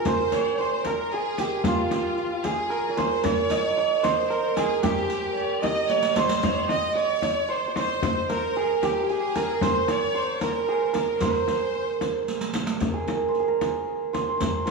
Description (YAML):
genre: Persian modal ensemble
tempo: 75 BPM (dotted quarters)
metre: 6/8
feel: straight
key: C dastgah shur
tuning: A4 = 440 Hz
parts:
  - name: santur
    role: melody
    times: 0.0-14.7 s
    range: F4 to Eb5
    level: -24 LUFS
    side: right 5 dB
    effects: none
  - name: clear studio violin section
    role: second line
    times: 0.0-12.3 s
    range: F4 to Eb5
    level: -32 LUFS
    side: equal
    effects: none
  - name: dark kamancheh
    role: second line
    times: 0.0-12.2 s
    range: F4 to Eb5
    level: -31 LUFS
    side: left 6 dB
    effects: none
  - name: frame drum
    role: percussion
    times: 0.1-14.7 s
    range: none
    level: -30 LUFS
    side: left 3 dB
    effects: none
  - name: riq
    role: percussion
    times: 0.1-14.7 s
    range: none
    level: -34 LUFS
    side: right 4 dB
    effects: none
room: wet concert hall reverb, RT60 2.3 s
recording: studio reverb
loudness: -22 LUFS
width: side -3 dB against mid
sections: 0.1-12.8 A section; 12.8-14.7 B section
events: drum fill 5.9-6.4, 12.3-12.8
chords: none